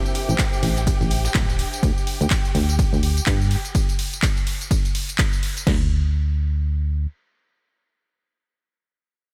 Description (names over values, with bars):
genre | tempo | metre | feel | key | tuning
piano house | 125 BPM | 4/4 | swing 59% on 16ths | unclear | A4 = 441 Hz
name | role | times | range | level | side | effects
warm studio string section | sustained chords | 0.0-3.8 s | G4 to G5 | -35 LUFS | equal | sidechain pumping
warbly tape-like pad | texture | 0.0-1.8 s | D4 to E5 | -38 LUFS | equal | chorus, built-in reverb, sidechain pumping
dusty soul sampler-style drum kit | drums | 0.1-1.7 s | hi-hat, shaker, snare drum | -39 LUFS | equal | none
house drum kit | drums | 0.1-5.7 s | handclaps, hi-hat, ride cymbal, tambourine | -30 LUFS | equal | none
solid FM bass | bass | 0.3-7.1 s | D1 to G2 | -23 LUFS | equal | tube saturation, sidechain pumping
house drum kit | drums | 0.4-5.8 s | crash cymbal, kick drum, snare drum | -24 LUFS | equal | none
room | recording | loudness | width
digital ambience | none | -21 LUFS | mono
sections
0.0-5.7 A section; 5.7-9.3 B section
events
drop 0.0-5.7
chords
0.0 Am7; 1.6 Dsus4; 3.5 N.C.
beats
0.39 0.87 1.35 | 1.83 2.31 2.79 3.27 | 3.75 4.23 4.71 5.19 | 5.67 6.15 6.63